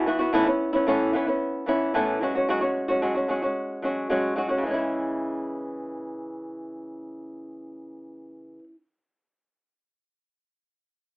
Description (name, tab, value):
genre	pop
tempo	112 BPM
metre	4/4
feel	straight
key	C# minor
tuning	A4 = 439 Hz
part	flamenco guitar	accompaniment	0.0-8.7 s	A2 to F#4	-24 LUFS	equal	none
room	moderate small room ambience, RT60 0.5 s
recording	rough home demo mix, telephone sound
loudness	-23 LUFS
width	side -26 dB against mid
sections	0.0-4.6 A section; 4.6-8.9 B section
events	none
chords	0.3 Aadd9; 2.2 F#sus2; 4.6 C#m